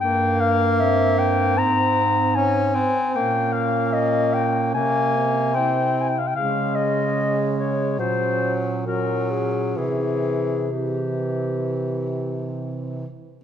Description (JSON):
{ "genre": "classical, lyrical piece for single-reed quartet", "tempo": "64-78 BPM", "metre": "4/4", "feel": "rubato", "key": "unclear", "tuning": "A4 = 436 Hz", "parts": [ { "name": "mellow clarinet", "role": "melody", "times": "0.0-12.5 s", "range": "G4 to Bb5", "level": "-22 LUFS", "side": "left 4 dB", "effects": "none" }, { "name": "mellow alto saxophone", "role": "second line", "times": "0.0-13.1 s", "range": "Bb3 to E4", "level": "-29 LUFS", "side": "right 10 dB", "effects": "none" }, { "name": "clear tenor saxophone", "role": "accompaniment", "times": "0.0-13.1 s", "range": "E3 to Db4", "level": "-25 LUFS", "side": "equal", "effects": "none" }, { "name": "mellow bass clarinet", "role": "bass", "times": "0.0-13.1 s", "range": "G2 to Db3", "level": "-27 LUFS", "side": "right 2 dB", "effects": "none" } ], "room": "moderate scoring stage reverb, RT60 1.5 s", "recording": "none", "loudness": "-19 LUFS", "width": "side -9 dB against mid", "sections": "0.0-13.4 A section", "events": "none", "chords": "0.0 C5/G; 1.6 Abadd9; 3.2 Bbm6; 4.7 C7b9; 6.4 Db5; 8.0 Gb/Bb; 9.8 C" }